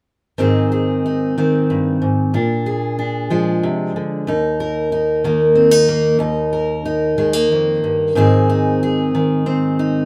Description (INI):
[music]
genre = folk, solo fingerstyle acoustic guitar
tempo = 92 BPM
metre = 3/4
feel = straight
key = unclear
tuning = A4 = 438 Hz
[part]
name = fingerpicked steel-string acoustic guitar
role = solo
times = 0.4-10.1 s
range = Eb2 to Bb4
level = -17 LUFS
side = equal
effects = none
[sound]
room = moderate studio reverb, RT60 0.5 s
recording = none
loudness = -17 LUFS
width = mono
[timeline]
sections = 0.4-8.2 A section; 8.2-10.1 B section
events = none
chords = 0.4 Ab; 2.3 Bb7; 4.3 Eb5; 8.2 Ab